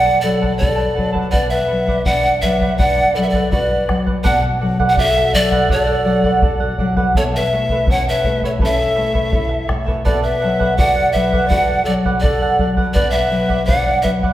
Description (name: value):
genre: andean folk, Andean ensemble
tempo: 83 BPM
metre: 4/4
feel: straight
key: unclear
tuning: A4 = 440 Hz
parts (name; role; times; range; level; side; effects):
- breathy bright pan flute; melody; 0.0-14.1 s; C#5 to F#5; -18 LUFS; equal; none
- mellow hollow large quena; second line; 0.0-14.1 s; A4 to D5; -22 LUFS; left 1 dB; none
- charango; accompaniment; 0.0-14.3 s; E4 to A5; -22 LUFS; right 3 dB; none
- nylon-string guitar; accompaniment; 0.0-14.3 s; B2 to A4; -22 LUFS; left 2 dB; none
- bombo; percussion; 0.4-14.3 s; none; -20 LUFS; equal; none
room: wet recital hall reverb, RT60 1.4 s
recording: recorded in a church or concert hall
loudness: -14 LUFS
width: side -14 dB against mid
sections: 0.0-14.3 A section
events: none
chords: 0.0 D/B; 1.3 Bm; 4.3 D/B; 7.2 A/B; 10.1 D/B; 13.0 Bm